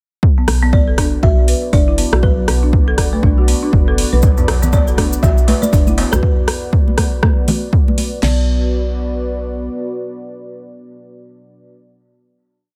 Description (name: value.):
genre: afro house.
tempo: 120 BPM.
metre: 4/4.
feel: swing 59% on 16ths.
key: B minor.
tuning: A4 = 440 Hz.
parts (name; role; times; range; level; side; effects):
dark analog pad; sustained chords; 0.2-11.7 s; B3 to D5; -29 LUFS; equal; chorus, sidechain pumping.
deep house drum kit; drums; 0.2-8.4 s; crash cymbal, kick drum, snare drum; -16 LUFS; equal; overdrive.
folk marimba with medium hard mallets; arpeggios; 0.4-8.5 s; F#3 to B4; -24 LUFS; equal; sidechain pumping, dub echo.
woody FM bass; bass; 0.5-9.7 s; F#1 to B1; -19 LUFS; equal; sidechain pumping.
deep house drum kit; drums; 0.5-8.1 s; hi-hat, rim click; -23 LUFS; equal; overdrive.
buzzing kalimba; melody; 0.7-11.7 s; B4 to E5; -28 LUFS; equal; dub echo.
cabasa; percussion; 4.2-6.2 s; none; -31 LUFS; equal; none.
darbuka; percussion; 4.2-6.2 s; none; -28 LUFS; equal; none.
congas; percussion; 4.6-8.1 s; none; -23 LUFS; equal; none.
room: small room ambience.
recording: none.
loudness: -15 LUFS.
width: mono.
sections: 0.2-8.2 drop; 8.2-12.2 final chord.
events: drop 0.2-8.2.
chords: 0.2 Bm.